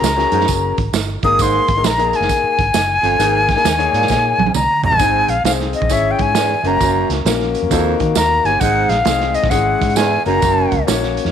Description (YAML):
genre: uptempo 1960s-style soul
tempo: 133 BPM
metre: 4/4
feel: swing 64% on 8ths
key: Ab mixolydian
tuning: A4 = 442 Hz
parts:
  - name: breathy bright concert flute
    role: melody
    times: 0.0-10.8 s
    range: Eb5 to Eb6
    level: -16 LUFS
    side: left 2 dB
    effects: none
  - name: warm concert grand piano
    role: accompaniment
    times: 0.0-11.3 s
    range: Ab3 to Db5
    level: -20 LUFS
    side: left 9 dB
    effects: tube saturation
  - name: vintage muted fingered electric bass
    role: bass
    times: 0.0-11.3 s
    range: Gb1 to Eb3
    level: -22 LUFS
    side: equal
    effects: none
  - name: crunchy breakbeat drum kit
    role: drums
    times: 0.0-11.3 s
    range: hi-hat, kick drum, snare drum, toms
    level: -21 LUFS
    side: right 5 dB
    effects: none
  - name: tambourine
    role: percussion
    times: 0.0-11.0 s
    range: none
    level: -28 LUFS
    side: right 13 dB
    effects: none
  - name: warm baritone saxophone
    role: riff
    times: 0.3-10.8 s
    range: Eb2 to Bb2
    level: -23 LUFS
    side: right 12 dB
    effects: none
room: light reverb, small room reverb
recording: 1960s-style stereo with parts hard left and right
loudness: -13 LUFS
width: side -8 dB against mid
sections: 0.0-5.0 A section; 5.0-11.3 B section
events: drum fill 4.1-5.0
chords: 0.0 Gbadd9; 1.2 Absus2; 5.0 Ab; 5.9 Dbm/Ab; 6.6 Gb; 7.7 Ebm; 8.6 Ab; 9.5 Dbm/Ab; 10.2 Gb